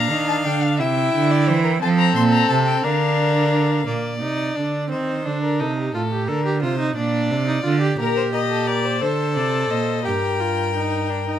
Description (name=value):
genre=classical, baroque-style fugue for string quartet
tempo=58 BPM (dotted quarters)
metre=6/8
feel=straight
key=Bb major, G minor from 8.0 s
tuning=A4 = 440 Hz
part: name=rich violin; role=melody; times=0.0-3.8, 8.0-11.4 s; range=Bb4 to C6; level=-25 LUFS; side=left 9 dB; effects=none
part: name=rich violin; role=second line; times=0.0-11.4 s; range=G4 to F5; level=-25 LUFS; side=left 5 dB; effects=none
part: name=rich viola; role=accompaniment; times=0.0-11.4 s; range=Bb3 to A4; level=-24 LUFS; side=right 1 dB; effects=none
part: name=clear cello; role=bass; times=0.0-11.4 s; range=G2 to F3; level=-21 LUFS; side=right 4 dB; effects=none
room=light reverb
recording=close, detailed microphones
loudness=-18 LUFS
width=side -10 dB against mid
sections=0.0-3.9 A section; 3.9-11.4 B section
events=none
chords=0.0 Bb; 0.8 C; 1.8 F; 2.8 Bb/D; 3.9 Bbadd9; 4.9 Cm; 5.9 F7/A; 7.0 Bb; 8.0 Gm/Bb; 9.0 D5; 10.1 Gm